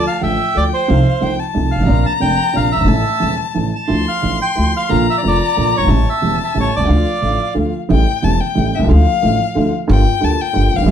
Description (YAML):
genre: tango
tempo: 180 BPM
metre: 3/4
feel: rubato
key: D minor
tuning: A4 = 440 Hz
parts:
  - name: bandoneon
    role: melody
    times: 0.0-7.5 s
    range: C5 to A5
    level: -20 LUFS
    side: right 4 dB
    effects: none
  - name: warm violin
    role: second line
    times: 0.0-10.9 s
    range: E5 to C6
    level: -20 LUFS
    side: left 9 dB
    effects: slapback echo
  - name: dark upright piano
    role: accompaniment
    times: 0.0-10.9 s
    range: E1 to F4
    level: -18 LUFS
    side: right 2 dB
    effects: none
  - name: upright bass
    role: bass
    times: 0.0-10.9 s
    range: E1 to D2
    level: -16 LUFS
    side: equal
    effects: none
room: moderate club reverb, RT60 0.7 s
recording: dark, warm production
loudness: -13 LUFS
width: side -9 dB against mid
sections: 0.0-7.9 A section; 7.9-10.9 B section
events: violin solo 7.9-10.9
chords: 0.0 Dm; 0.9 F7/C; 1.9 Bbadd9; 2.9 A; 3.9 Dmadd9; 4.9 Bb; 5.9 A7; 6.9 Dm; 7.9 A7; 8.9 Dmadd9; 9.9 Gm7